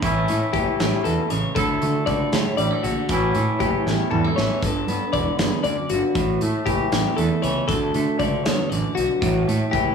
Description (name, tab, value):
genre	math rock and midwest emo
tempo	78 BPM (dotted quarters)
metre	6/8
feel	straight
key	unclear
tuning	A4 = 438 Hz
part	twangy electric guitar	accompaniment	0.0-9.9 s	D2 to A4	-24 LUFS	right 3 dB	none
part	fuzz fingered electric bass	bass	0.0-9.8 s	E1 to D3	-25 LUFS	right 1 dB	overdrive
part	loose indie drum kit	drums	0.0-9.9 s	hi-hat, kick drum, snare drum, toms	-27 LUFS	equal	none
part	twelve-string electric guitar	arpeggios	0.5-9.9 s	F#4 to D5	-24 LUFS	left 6 dB	none
room	light reverb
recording	band playing live in one room, studio reverb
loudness	-19 LUFS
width	side -6 dB against mid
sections	0.0-9.9 A section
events	drum fill 3.9-4.6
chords	0.0 A; 1.6 Dsus2; 3.1 A; 4.6 G; 6.2 A; 7.7 Dsus2; 9.2 A5